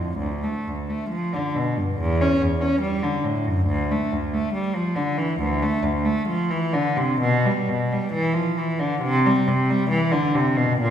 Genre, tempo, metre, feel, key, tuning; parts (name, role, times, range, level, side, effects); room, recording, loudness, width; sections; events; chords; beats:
classical, baroque-style suite movement for unaccompanied cello; 68 BPM; 4/4; rubato; C major; A4 = 440 Hz
rich cello; solo; 0.0-10.9 s; D2 to C#4; -20 LUFS; equal
wet recital hall reverb, RT60 1.7 s; heard from further back in the room; -20 LUFS; side -9 dB against mid
0.0-10.9 A section
| 0.19 1.11 1.99 2.84 | 3.70 4.55 5.42 6.30 | 7.23 8.14 9.03 9.91 | 10.79